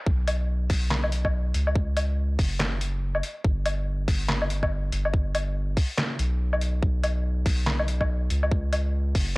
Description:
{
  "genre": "deep dubstep",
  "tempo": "142 BPM",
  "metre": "4/4",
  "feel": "swing 60% on 16ths, half-time",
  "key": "unclear",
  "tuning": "A4 = 440 Hz",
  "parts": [
    { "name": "soft dub sub bass", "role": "bass", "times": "0.1-9.4 s", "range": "F#1 to C#2", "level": "-26 LUFS", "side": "equal", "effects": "tube saturation, high-pass filter" },
    { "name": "electronic kick drum", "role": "drums", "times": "0.1-9.3 s", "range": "none", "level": "-24 LUFS", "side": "equal", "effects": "high-pass filter on kick" },
    { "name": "trip hop sampler-style drum kit", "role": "drums", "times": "0.3-9.3 s", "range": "handclaps, hi-hat, snare drum, woodblock", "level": "-28 LUFS", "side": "left 1 dB", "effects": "none" }
  ],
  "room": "little or no reverb",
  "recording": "dry, gritty hardware recording, cassette tape",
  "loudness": "-23 LUFS",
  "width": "side -24 dB against mid",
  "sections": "0.1-9.4 A section",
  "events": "drop 0.1-9.4",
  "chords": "none",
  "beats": "| 0.07 0.49 0.91 1.33 | 1.75 2.18 2.60 3.02 | 3.44 3.87 4.29 4.71 | 5.13 5.56 5.98 6.40 | 6.83 7.25 7.67 8.09 | 8.52 8.94 9.36"
}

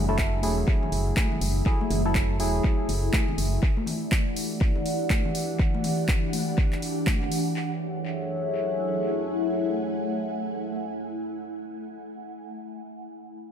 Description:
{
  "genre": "deep house",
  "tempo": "122 BPM",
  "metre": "4/4",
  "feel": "swing 60% on 16ths",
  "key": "F# minor",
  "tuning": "A4 = 437 Hz",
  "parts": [
    { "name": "dark analog pad", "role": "sustained chords", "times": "0.4-12.3 s", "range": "E3 to G#5", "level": "-32 LUFS", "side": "equal", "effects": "chorus, phaser, sidechain pumping" },
    { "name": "percussive organ stab", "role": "stabs", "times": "0.0-3.6 s", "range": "F#3 to A4", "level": "-30 LUFS", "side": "right 1 dB", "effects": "chorus, sidechain pumping, dub echo" },
    { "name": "organ-like FM bass", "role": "bass", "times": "0.0-3.6 s", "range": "E1 to F#1", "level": "-27 LUFS", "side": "equal", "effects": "tube saturation, sidechain pumping" },
    { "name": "ethereal airy pad", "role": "texture", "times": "0.0-12.3 s", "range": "E3 to G#5", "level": "-31 LUFS", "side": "left 1 dB", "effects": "ensemble chorus, built-in reverb, phaser, sidechain pumping" },
    { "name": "deep house drum kit", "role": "drums", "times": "0.2-7.4 s", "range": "handclaps, hi-hat", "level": "-33 LUFS", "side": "equal", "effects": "tape echo" },
    { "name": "electronic kick drum", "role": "drums", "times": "0.2-7.2 s", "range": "none", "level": "-24 LUFS", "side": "equal", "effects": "none" },
    { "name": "congas", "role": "percussion", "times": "0.4-7.3 s", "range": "none", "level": "-34 LUFS", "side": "left 3 dB", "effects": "none" }
  ],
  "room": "light reverb",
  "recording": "echo-heavy mix",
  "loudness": "-24 LUFS",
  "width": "side -8 dB against mid",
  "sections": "0.0-7.6 A section; 7.6-11.5 B section",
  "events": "none",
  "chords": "0.0 F#m9; 3.6 Em9; 7.6 F#m9",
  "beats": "0.18 0.68 1.17 | 1.66 2.15 2.64 3.13 | 3.63 4.12 4.61 5.10 | 5.59 6.09 6.58 7.07 | 7.56 8.05 8.54 9.04 | 9.53 10.02 10.51 11.00"
}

